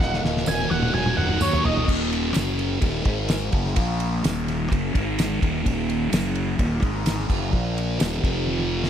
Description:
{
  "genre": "psychedelic rock",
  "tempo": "127 BPM",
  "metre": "4/4",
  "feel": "straight",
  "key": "Eb dorian",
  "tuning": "A4 = 440 Hz",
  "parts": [
    { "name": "octave-fuzz lead guitar", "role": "melody", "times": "0.0-1.9 s", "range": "Db5 to Ab5", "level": "-27 LUFS", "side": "right 2 dB", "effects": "distortion, slapback echo" },
    { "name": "thick fuzz guitar", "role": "riff", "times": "0.0-8.9 s", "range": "Eb2 to Eb4", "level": "-25 LUFS", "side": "left 1 dB", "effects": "distortion, phaser" },
    { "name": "fuzz fingered electric bass", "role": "bass", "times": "0.0-8.9 s", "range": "Eb1 to Eb2", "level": "-27 LUFS", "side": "equal", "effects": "overdrive" },
    { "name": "damped 70s drum kit", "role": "drums", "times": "0.0-8.9 s", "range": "crash cymbal, kick drum, ride cymbal, snare drum, toms", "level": "-25 LUFS", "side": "equal", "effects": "none" },
    { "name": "tambourine", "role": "percussion", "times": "0.5-8.1 s", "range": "none", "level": "-38 LUFS", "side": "right 12 dB", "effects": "none" }
  ],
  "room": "light reverb, small room ambience",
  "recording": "none",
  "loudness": "-20 LUFS",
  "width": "side -9 dB against mid",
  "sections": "0.0-1.9 A section; 1.9-8.9 B section",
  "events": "drum fill 0.0-1.9, 8.5-8.9; lead electric guitar solo 0.0-1.9",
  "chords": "0.0 Ebm; 1.9 Eb5; 2.3 Gb5; 2.8 Eb5; 3.1 Ab5; 3.5 Gb5; 3.8 Bb5; 4.2 Ebm; 4.9 Ab5; 5.4 Eb5; 6.1 Gb5; 6.6 Eb5; 6.8 Ab5; 7.3 Gb5; 7.5 Bb5; 8.0 Eb5; 8.2 F5"
}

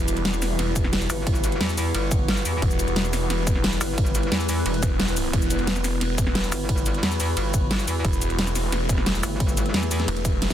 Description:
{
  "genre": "dark technical drum and bass",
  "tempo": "177 BPM",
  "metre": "4/4",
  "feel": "straight",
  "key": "E minor",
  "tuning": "A4 = 440 Hz",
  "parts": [
    { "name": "metallic inharmonic drone", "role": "sustained chords", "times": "0.0-10.5 s", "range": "E3 to F#4", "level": "-31 LUFS", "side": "left 2 dB", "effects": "chorus, built-in reverb, sidechain pumping" },
    { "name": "snarling distorted saw bass", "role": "bass", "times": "0.0-10.5 s", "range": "E1", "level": "-26 LUFS", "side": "equal", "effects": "distortion" },
    { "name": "dubstep drum kit", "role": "drums", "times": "0.0-10.5 s", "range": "hi-hat, ride cymbal, shaker, snare drum", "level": "-27 LUFS", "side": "equal", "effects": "none" },
    { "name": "warbly tape-like pad", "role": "texture", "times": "0.0-10.5 s", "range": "E4 to B5", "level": "-31 LUFS", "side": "equal", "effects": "chorus, built-in reverb, sidechain pumping" },
    { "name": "electronic kick drum", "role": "drums", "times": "0.8-10.5 s", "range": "none", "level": "-24 LUFS", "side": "equal", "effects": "none" },
    { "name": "metallic wobble bass", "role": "bass", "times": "1.1-10.1 s", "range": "E1 to E2", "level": "-25 LUFS", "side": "equal", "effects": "chorus" }
  ],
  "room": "light reverb",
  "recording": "dense, heavily limited modern master",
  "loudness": "-21 LUFS",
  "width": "side -11 dB against mid",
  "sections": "0.0-10.5 A section",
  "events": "none",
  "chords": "0.0 Emadd9"
}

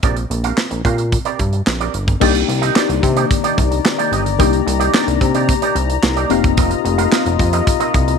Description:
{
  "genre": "early-eighties boogie funk",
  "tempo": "110 BPM",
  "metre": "4/4",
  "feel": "straight",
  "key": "C minor",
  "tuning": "A4 = 438 Hz",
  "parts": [
    { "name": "electric guitar with an envelope filter", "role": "riff", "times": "0.0-8.1 s", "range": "Bb3 to F5", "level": "-22 LUFS", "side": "right 13 dB", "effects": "ensemble chorus" },
    { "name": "chorused synth bass", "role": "bass", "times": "0.0-8.2 s", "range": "F1 to C3", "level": "-18 LUFS", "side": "equal", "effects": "none" },
    { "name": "modern studio drum kit", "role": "drums", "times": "0.0-8.2 s", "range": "crash cymbal, handclaps, hi-hat, kick drum, snare drum", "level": "-18 LUFS", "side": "right 1 dB", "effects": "none" },
    { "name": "mellow FM electric piano", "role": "accompaniment", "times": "2.2-8.2 s", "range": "Bb3 to G4", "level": "-20 LUFS", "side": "left 17 dB", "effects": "chorus" },
    { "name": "warm analog pad", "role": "sustained chords", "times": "2.2-8.2 s", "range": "Eb3 to Bb5", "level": "-22 LUFS", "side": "left 16 dB", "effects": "chorus" }
  ],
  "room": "small room ambience",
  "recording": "1960s-style stereo with parts hard left and right",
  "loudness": "-14 LUFS",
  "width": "side -6 dB against mid",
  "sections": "0.0-2.2 A section; 2.2-8.2 B section",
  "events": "none",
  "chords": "0.0 Bb69; 2.2 Cm9; 6.3 F7sus4"
}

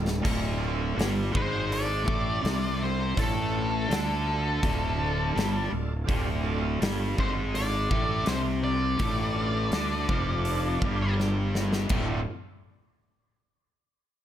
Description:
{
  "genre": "blues rock power trio and southern rock",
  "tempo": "82 BPM",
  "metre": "4/4",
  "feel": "straight",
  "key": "D minor",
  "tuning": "A4 = 440 Hz",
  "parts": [
    { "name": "bright tonewheel organ", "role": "sustained chords", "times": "0.0-12.2 s", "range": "D4 to C6", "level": "-40 LUFS", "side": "right 5 dB", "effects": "slow rotary speaker, overdrive, chorus vibrato" },
    { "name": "distorted electric guitar", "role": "riff", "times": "0.0-12.2 s", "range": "D2 to D4", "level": "-31 LUFS", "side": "equal", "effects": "distortion" },
    { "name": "fuzz fingered electric bass", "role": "bass", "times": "0.0-12.2 s", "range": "D1 to D2", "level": "-30 LUFS", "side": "equal", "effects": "overdrive" },
    { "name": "big rock drum kit", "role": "drums", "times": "0.1-12.1 s", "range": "crash cymbal, hi-hat, kick drum, snare drum, splash cymbal", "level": "-31 LUFS", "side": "equal", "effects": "none" },
    { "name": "octave-fuzz lead guitar", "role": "melody", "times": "1.4-11.1 s", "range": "A4 to D5", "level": "-32 LUFS", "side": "left 1 dB", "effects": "distortion" }
  ],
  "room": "light reverb",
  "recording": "none",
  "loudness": "-25 LUFS",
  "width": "side -11 dB against mid",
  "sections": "0.0-11.9 A section; 11.9-14.2 B section",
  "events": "drum fill 0.0, 11.2-11.9; tonewheel organ fill 9.7-11.9",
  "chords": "0.0 Dm"
}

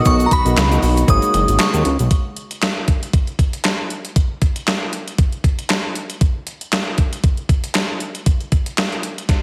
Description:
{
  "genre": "early-eighties boogie funk",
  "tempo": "117 BPM",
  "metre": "4/4",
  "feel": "swing 56% on 16ths",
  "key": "unclear",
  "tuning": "A4 = 438 Hz",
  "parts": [
    { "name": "glassy synth bell", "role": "melody", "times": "0.0-2.0 s", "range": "A#5 to D#6", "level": "-22 LUFS", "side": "equal", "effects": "chorus, phaser, slapback echo" },
    { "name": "bright tine electric piano", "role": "accompaniment", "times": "0.0-1.9 s", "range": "A#3 to D#5", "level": "-25 LUFS", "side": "equal", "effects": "slapback echo" },
    { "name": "muted studio string section", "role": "sustained chords", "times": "0.0-2.1 s", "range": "B2 to F#4", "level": "-28 LUFS", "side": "equal", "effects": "none" },
    { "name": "fat analog bass", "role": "bass", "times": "0.1-2.1 s", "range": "F#1 to D#2", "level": "-19 LUFS", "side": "equal", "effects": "none" },
    { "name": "clean 12-bit digital drum machine", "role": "drums", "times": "0.1-9.4 s", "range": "handclaps, hi-hat, kick drum, snare drum", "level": "-20 LUFS", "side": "equal", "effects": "overdrive" },
    { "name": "tube shaker", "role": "percussion", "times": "0.1-2.1 s", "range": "none", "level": "-38 LUFS", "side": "equal", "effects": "none" }
  ],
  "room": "moderate scoring stage reverb, RT60 1.6 s, digital ambience",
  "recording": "big arena sound",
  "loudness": "-18 LUFS",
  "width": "mono",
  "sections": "0.0-2.1 A section; 2.1-9.4 B section",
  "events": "none",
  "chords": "0.0 Bmaj7; 1.1 G#9sus4; 2.1 N.C."
}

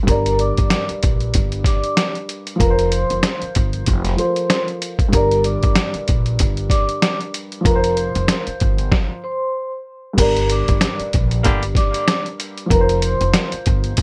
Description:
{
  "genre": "hip hop, boom-bap hip-hop",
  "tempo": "95 BPM",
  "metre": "4/4",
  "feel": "swing 57% on 16ths",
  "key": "G minor",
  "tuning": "A4 = 440 Hz",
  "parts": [
    { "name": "dark baby grand piano", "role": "accompaniment", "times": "0.0-14.0 s", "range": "G2 to D5", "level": "-27 LUFS", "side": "equal", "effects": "high-pass filter, low-pass filter" },
    { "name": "vibraphone with soft mallets", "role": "melody", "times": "0.1-13.5 s", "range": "Bb4 to D6", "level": "-24 LUFS", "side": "equal", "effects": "high-pass filter, low-pass filter" },
    { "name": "upright bass", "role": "bass", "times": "0.1-14.0 s", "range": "F1 to Bb1", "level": "-24 LUFS", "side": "equal", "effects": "none" },
    { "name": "trip hop sampler-style drum kit", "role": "drums", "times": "0.1-14.0 s", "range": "crash cymbal, hi-hat, kick drum, snare drum", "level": "-20 LUFS", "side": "equal", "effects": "none" },
    { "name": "warm horn section", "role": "stabs", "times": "11.4-11.6 s", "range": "D3 to G4", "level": "-26 LUFS", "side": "equal", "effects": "high-pass filter, low-pass filter, tape echo" }
  ],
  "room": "little or no reverb",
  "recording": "none",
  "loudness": "-18 LUFS",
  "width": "mono",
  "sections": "0.0-10.2 A section; 10.2-14.0 B section",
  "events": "stop 8.9-10.2",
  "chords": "0.1 Gm; 2.6 Fsus4; 5.1 Gm; 7.7 Fsus4; 10.2 Gm; 12.7 Fsus4"
}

